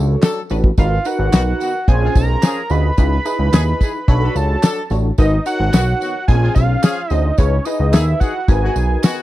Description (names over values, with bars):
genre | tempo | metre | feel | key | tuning
early-eighties boogie funk | 109 BPM | 4/4 | straight | G# dorian | A4 = 441 Hz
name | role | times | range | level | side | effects
funky polysynth comp | accompaniment | 0.0-9.2 s | B#3 to D#5 | -23 LUFS | left 1 dB | chorus
fat analog bass | bass | 0.0-9.0 s | G#1 to D#2 | -16 LUFS | equal | none
clear horn section | second line | 0.2-9.2 s | C#3 to A4 | -26 LUFS | left 5 dB | none
damped 70s drum kit | drums | 0.2-9.2 s | handclaps, hi-hat, kick drum, snare drum | -12 LUFS | equal | none
tambourine | percussion | 0.2-9.2 s | none | -34 LUFS | right 19 dB | none
fat analog lead | melody | 0.8-9.2 s | C#5 to B5 | -22 LUFS | right 2 dB | chorus
room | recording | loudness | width
small room reverb | dry, close 1970s-style studio recording | -14 LUFS | side -15 dB against mid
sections
0.0-9.2 A section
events
none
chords
0.0 Bm9; 0.8 G#m9; 1.9 A#m9; 3.0 C#m9; 4.1 Bm9; 5.2 G#m9; 6.3 A#m9; 7.4 C#m9; 8.5 G#m9